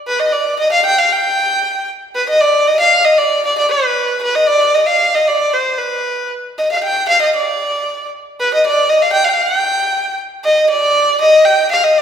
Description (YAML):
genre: klezmer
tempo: 116 BPM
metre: 2/4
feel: straight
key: unclear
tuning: A4 = 439 Hz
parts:
  - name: rich erhu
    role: solo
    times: 0.1-12.0 s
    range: B4 to G5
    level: -12 LUFS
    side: equal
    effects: none
room: wet recital hall reverb, RT60 1.7 s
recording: recorded in a church or concert hall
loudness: -12 LUFS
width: side -8 dB against mid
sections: 0.0-2.1 A section; 2.1-10.4 A section; 10.4-12.0 B section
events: none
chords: none